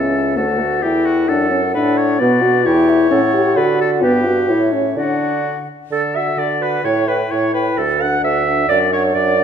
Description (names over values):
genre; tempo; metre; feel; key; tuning
quick classical-period movement for wind quintet; 130 BPM; 2/4; straight; D major; A4 = 440 Hz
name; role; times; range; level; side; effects
mellow hollow silver concert flute; melody; 0.0-9.4 s; E5 to G5; -24 LUFS; left 10 dB; none
clear oboe; second line; 0.0-9.4 s; F#4 to F#5; -21 LUFS; left 3 dB; none
mellow French horn; accompaniment; 0.0-9.4 s; A3 to G4; -18 LUFS; left 1 dB; none
warm clarinet; accompaniment; 0.0-9.4 s; E4 to F#5; -22 LUFS; right 8 dB; none
mellow bassoon; bass; 0.0-9.4 s; C#2 to D3; -21 LUFS; right 3 dB; none
room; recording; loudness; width
wet recital hall reverb, RT60 1.4 s; none; -14 LUFS; side -8 dB against mid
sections
0.0-5.9 A section; 5.9-9.4 A section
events
none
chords
0.4 D; 1.3 D/F#; 2.2 Bm; 2.7 Em; 3.1 A7; 3.6 D; 4.0 G; 4.5 A7; 5.0 D; 6.8 A5; 7.8 D; 8.7 D/F#